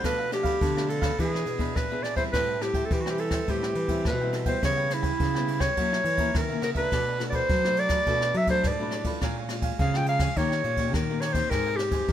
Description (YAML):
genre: samba and choro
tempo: 105 BPM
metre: 4/4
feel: straight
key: unclear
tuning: A4 = 440 Hz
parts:
  - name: clear clarinet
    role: melody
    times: 0.0-12.1 s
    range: E4 to G5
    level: -27 LUFS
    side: equal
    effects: none
  - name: cavaquinho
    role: accompaniment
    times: 0.0-12.1 s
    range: D4 to Ab5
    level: -37 LUFS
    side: right 5 dB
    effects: none
  - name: nylon-string guitar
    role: accompaniment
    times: 0.0-12.1 s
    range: F2 to G#4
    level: -35 LUFS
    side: left 5 dB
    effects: none
  - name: nylon-string guitar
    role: bass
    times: 0.0-12.1 s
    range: Ab2 to F#3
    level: -30 LUFS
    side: equal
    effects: none
  - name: jazz brush drum kit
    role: drums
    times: 0.0-12.1 s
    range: kick drum, ride cymbal, rim click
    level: -30 LUFS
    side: equal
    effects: none
room: moderate studio reverb, RT60 0.7 s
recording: minimal, uncompressed stereo recording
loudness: -24 LUFS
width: side -10 dB against mid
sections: 0.0-12.1 A section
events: none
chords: 0.0 Bm7b5; 1.2 E7; 2.3 Am7; 4.6 C#m7b5; 5.8 F#7; 6.9 Bm7; 9.2 Bbm7; 10.4 Eb7; 11.5 Abmaj7